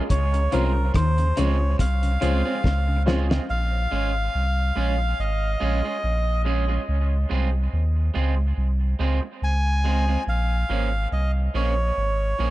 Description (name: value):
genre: dub reggae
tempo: 71 BPM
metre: 4/4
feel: swing 56% on 16ths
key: Bb minor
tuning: A4 = 441 Hz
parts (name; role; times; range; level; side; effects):
- electric guitar at the edge of break-up; accompaniment; 0.0-12.5 s; F3 to Ab4; -31 LUFS; right 6 dB; dub echo
- melodica; melody; 0.1-12.5 s; Bb4 to Ab5; -28 LUFS; equal; dub echo
- clean electric guitar; riff; 0.1-2.9 s; C3 to Eb3; -31 LUFS; left 4 dB; dub echo
- warm sub bass; bass; 0.1-12.5 s; Ab1 to Eb2; -22 LUFS; equal; none
- cloth-damped thuddy drum kit; drums; 0.1-3.5 s; hi-hat, kick drum, rim click, snare drum; -24 LUFS; equal; none
- mellow tonewheel organ; accompaniment; 0.3-3.4 s; Db3 to Db4; -34 LUFS; left 2 dB; none
- warm upright piano; stabs; 0.5-3.3 s; Db4 to C5; -32 LUFS; left 3 dB; dub echo
room: light reverb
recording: echo-heavy mix, nothing above 10.3 kHz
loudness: -20 LUFS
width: side -16 dB against mid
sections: 0.0-3.5 A section; 3.5-12.5 B section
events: drum fill 2.6-3.5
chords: 0.1 Dbmaj7; 3.5 Bbm7; 6.9 Dbmaj7; 10.3 Bbm7